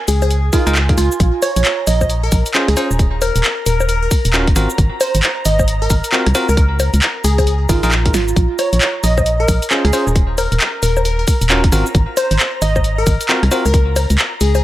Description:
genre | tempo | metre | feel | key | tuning
UK garage, two-step garage | 134 BPM | 4/4 | swing 62% on 16ths | Bb minor | A4 = 440 Hz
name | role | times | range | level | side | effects
airy breathy pad | sustained chords | 0.0-14.6 s | Ab5 to Bb5 | -29 LUFS | left 1 dB | chorus, sidechain pumping
glassy wavetable pluck | melody | 0.1-14.6 s | F4 to Eb5 | -20 LUFS | right 1 dB | chorus, tape echo
organ-like FM bass | bass | 0.1-14.6 s | Eb1 to Db2 | -16 LUFS | equal | none
punchy analog drum machine | drums | 0.1-14.6 s | bongos, handclaps, hi-hat, rim click, shaker, snare drum | -18 LUFS | left 1 dB | none
bell-like tine electric piano | stabs | 0.5-13.6 s | C4 to C5 | -21 LUFS | equal | tape echo
electronic kick drum | drums | 0.5-13.8 s | none | -15 LUFS | equal | none
room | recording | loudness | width
light reverb | echo-heavy mix | -12 LUFS | side -14 dB against mid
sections
0.0-14.6 A section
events
drum fill 8.1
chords
0.0 Db6; 1.2 Bbm9; 3.0 Eb5; 4.6 Ab13; 6.6 Db6; 8.4 Bbm9; 10.2 Eb5; 11.7 Ab13; 13.7 Db5

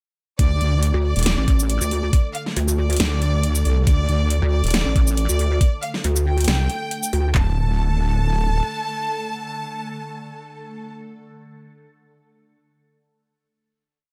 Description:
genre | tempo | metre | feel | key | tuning
heavy wobble dubstep | 138 BPM | 4/4 | swing 53% on 16ths, half-time | unclear | A4 = 439 Hz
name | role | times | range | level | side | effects
rich studio violin section | melody | 0.4-10.9 s | D5 to A5 | -31 LUFS | equal | delay
evolving wavetable pad | sustained chords | 1.1-10.9 s | D3 to A4 | -36 LUFS | equal | ensemble chorus, built-in reverb, phaser, sidechain pumping
wobble bass | bass | 0.4-8.6 s | D1 to D2 | -21 LUFS | equal | chorus, overdrive
big-room dance drum kit | drums | 0.4-7.2 s | hi-hat, shaker, snare drum | -27 LUFS | equal | none
dubstep drum kit | drums | 0.4-7.5 s | handclaps, kick drum, toms | -19 LUFS | equal | none
pulsing pluck wobble bass | bass | 0.9-7.3 s | A1 to D2 | -22 LUFS | equal | chorus, overdrive
room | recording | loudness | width
digital ambience | none | -20 LUFS | mono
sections
0.4-7.3 drop; 7.3-10.8 final chord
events
drop 0.4-7.3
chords
0.4 D5

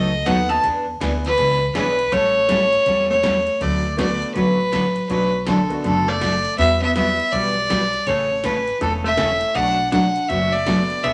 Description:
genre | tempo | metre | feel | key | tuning
country, western swing | 161 BPM | 4/4 | swing 63% on 8ths | unclear | A4 = 441 Hz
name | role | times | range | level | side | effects
clear fiddle | melody | 0.0-11.1 s | A4 to A5 | -21 LUFS | equal | none
hollow-body jazz guitar | second line | 0.0-11.1 s | D3 to D#4 | -30 LUFS | equal | none
picked steel-string acoustic guitar | accompaniment | 0.0-11.1 s | B2 to B4 | -26 LUFS | equal | none
upright bass | bass | 0.0-11.1 s | E1 to E2 | -30 LUFS | equal | none
tack piano | accompaniment | 0.3-11.0 s | G3 to C#5 | -32 LUFS | equal | none
80s electronic pad drums | drums | 0.3-11.1 s | hi-hat, kick drum, ride cymbal, snare drum | -33 LUFS | equal | none
room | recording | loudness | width
moderate studio reverb, RT60 0.6 s | none | -19 LUFS | mono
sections
0.0-3.6 A section; 3.6-11.1 B section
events
none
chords
0.0 B7; 0.6 E7; 2.1 A7; 3.6 D6; 5.1 Bm7; 6.6 Emadd9; 8.1 A; 9.6 Bm7

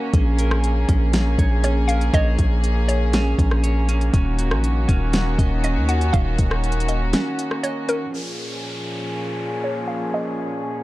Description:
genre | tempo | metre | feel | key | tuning
hip hop, atmospheric cloud-rap | 120 BPM | 4/4 | half-time | unclear | A4 = 440 Hz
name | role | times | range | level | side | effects
hollow square pluck | melody | 0.0-10.8 s | Bb4 to Gb5 | -28 LUFS | equal | chorus, low-pass filter, analog delay
rich chamber string section | sustained chords | 0.0-10.8 s | Bb2 to Ab4 | -26 LUFS | equal | sidechain pumping, low-pass filter
clean electric guitar | arpeggios | 0.0-8.1 s | Db4 to Eb5 | -29 LUFS | right 2 dB | low-pass filter, analog delay
long sustained 808-style bass | bass | 0.1-7.1 s | Eb1 to Eb2 | -20 LUFS | equal | none
smooth R&B drum kit | drums | 0.1-8.0 s | hi-hat, kick drum, rim click, snare drum | -21 LUFS | equal | none
downlifter | sound effects | 8.1-10.8 s | none | -33 LUFS | equal | none
room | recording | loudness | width
little or no reverb | dry, gritty hardware recording, transformer saturation | -18 LUFS | side -17 dB against mid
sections
0.0-8.1 A section; 8.1-10.8 B section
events
break 7.1-8.1; filter sweep 8.1-10.8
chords
0.1 Bbm7; 4.1 Ebm7; 8.1 Bbm7

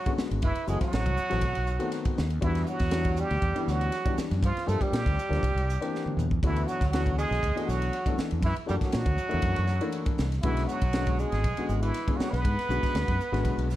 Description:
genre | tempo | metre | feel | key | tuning
electric jazz fusion | 120 BPM | 4/4 | swing 53% on 16ths | unclear | A4 = 438 Hz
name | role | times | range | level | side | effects
trumpet with plunger mute | melody | 0.0-13.8 s | E4 to B4 | -32 LUFS | right 2 dB | plate reverb
edgy tenor saxophone | second line | 0.0-13.8 s | E3 to B3 | -36 LUFS | right 4 dB | none
warm grand piano | accompaniment | 0.1-13.7 s | D3 to A4 | -33 LUFS | left 4 dB | none
crisp fusion drum kit | drums | 0.1-13.8 s | hi-hat, kick drum, ride cymbal, snare drum, toms | -30 LUFS | equal | none
fretless electric bass | bass | 0.2-13.8 s | F#1 to Bb2 | -28 LUFS | equal | none
room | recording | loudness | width
light reverb | dark, warm production | -25 LUFS | side -14 dB against mid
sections
0.0-13.8 A section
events
drum fill 5.9-6.4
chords
0.4 F#m7b5; 1.4 B7b9; 2.4 Em9; 4.4 Gm7; 5.4 C9; 6.4 D69; 8.4 F#7alt; 10.4 Bm69

